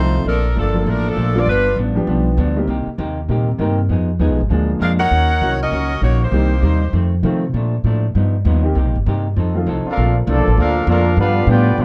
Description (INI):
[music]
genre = jazz, big band swing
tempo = 198 BPM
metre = 4/4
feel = swing 63% on 8ths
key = Bb major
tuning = A4 = 442 Hz
[part]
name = clear saxophone section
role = melody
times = 0.0-1.8, 4.8-7.1 s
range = F3 to Gb5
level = -22 LUFS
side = equal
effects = none
[part]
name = vintage hollow-body jazz guitar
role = accompaniment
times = 0.0-11.8 s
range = F2 to A4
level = -26 LUFS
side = equal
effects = none
[part]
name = warm upright piano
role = accompaniment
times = 0.0-9.7 s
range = Eb3 to Bb4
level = -24 LUFS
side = equal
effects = none
[part]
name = upright bass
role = bass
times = 0.0-11.8 s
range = G1 to C3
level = -19 LUFS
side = equal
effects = none
[part]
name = warm trumpet section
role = melody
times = 9.9-11.8 s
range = Bb3 to G5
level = -22 LUFS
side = equal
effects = none
[part]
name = bright trombone section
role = second line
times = 9.9-11.8 s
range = F3 to A4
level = -24 LUFS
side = equal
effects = none
[part]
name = muted trombone section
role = sustained chords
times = 10.0-11.8 s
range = D3 to F4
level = -28 LUFS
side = equal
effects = none
[sound]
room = light reverb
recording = dark, warm production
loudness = -17 LUFS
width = mono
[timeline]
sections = 0.3-10.0 A section; 10.0-11.8 B section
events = none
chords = 0.3 Bbmaj7; 1.5 G7; 2.7 Cm7; 3.9 Fm7b5; 4.5 Bb7; 5.1 Ebm7; 6.3 Cm7; 6.9 F7; 7.5 Bbmaj7; 8.1 G7alt; 8.8 Cm7; 9.4 F7; 10.0 Bbmaj7; 11.2 G7